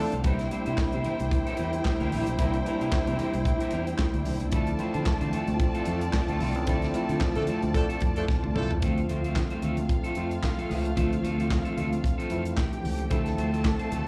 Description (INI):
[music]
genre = disco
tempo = 112 BPM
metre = 4/4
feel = swing 56% on 16ths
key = D minor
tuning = A4 = 438 Hz
[part]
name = rich studio string section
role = second line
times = 0.0-14.1 s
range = D4 to A5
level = -37 LUFS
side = equal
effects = none
[part]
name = tine electric piano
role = accompaniment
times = 0.0-14.1 s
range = E3 to F4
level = -36 LUFS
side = equal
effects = medium tremolo
[part]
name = warm French horn section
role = sustained chords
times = 0.0-14.1 s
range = C3 to E4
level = -38 LUFS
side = equal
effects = none
[part]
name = clear horn section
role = stabs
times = 0.0-0.1, 7.4-8.7 s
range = F3 to A4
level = -35 LUFS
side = equal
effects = none
[part]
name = electric guitar at the edge of break-up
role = accompaniment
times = 0.1-14.1 s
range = G3 to C5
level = -40 LUFS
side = equal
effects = spring reverb
[part]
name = fingered electric bass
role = bass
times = 0.1-14.1 s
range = Bb1 to D3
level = -32 LUFS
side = equal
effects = none
[part]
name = modern studio drum kit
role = drums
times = 0.1-14.1 s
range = handclaps, hi-hat, kick drum, snare drum, toms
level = -31 LUFS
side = equal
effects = none
[part]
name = congas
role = percussion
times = 0.2-14.1 s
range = none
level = -41 LUFS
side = equal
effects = none
[sound]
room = light reverb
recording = live gig heard through the venue's PA, club reverb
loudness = -27 LUFS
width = mono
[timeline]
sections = 0.0-8.8 A section; 8.8-14.1 B section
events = band accent 0.0, 6.7-8.8; drum fill 8.3-8.8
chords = 0.2 C7; 4.5 Dm7